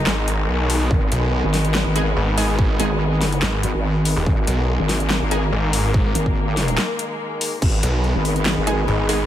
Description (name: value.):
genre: heavy wobble dubstep.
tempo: 143 BPM.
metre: 4/4.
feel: half-time.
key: G# minor.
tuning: A4 = 440 Hz.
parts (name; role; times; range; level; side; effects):
muted chamber string section; sustained chords; 0.0-9.3 s; D#3 to D#4; -25 LUFS; left 2 dB; sidechain pumping.
wobble bass; bass; 0.0-8.9 s; G#1; -20 LUFS; equal; chorus, overdrive.
snarling distorted saw bass; bass; 0.1-9.3 s; D#1 to B1; -20 LUFS; equal; overdrive.
dubstep drum kit; drums; 0.1-9.2 s; crash cymbal, handclaps, hi-hat, ride cymbal, snare drum; -25 LUFS; left 1 dB; none.
electronic kick drum; drums; 0.9-7.7 s; none; -19 LUFS; equal; none.
orchestra-hit-like synth stab; stabs; 2.0-5.4, 8.7-9.3 s; G#3 to G#4; -25 LUFS; right 2 dB; built-in reverb, cassette tape, tape echo.
warbly tape-like pad; texture; 8.1-9.3 s; G#4 to B5; -29 LUFS; equal; chorus, built-in reverb, sidechain pumping.
room: digital ambience.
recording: none.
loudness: -17 LUFS.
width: side -11 dB against mid.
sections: 0.0-7.6 A section; 7.6-9.3 A section.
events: drop 0.0-7.6, 7.6-9.3; break 6.8-7.6.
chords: 0.0 G#m.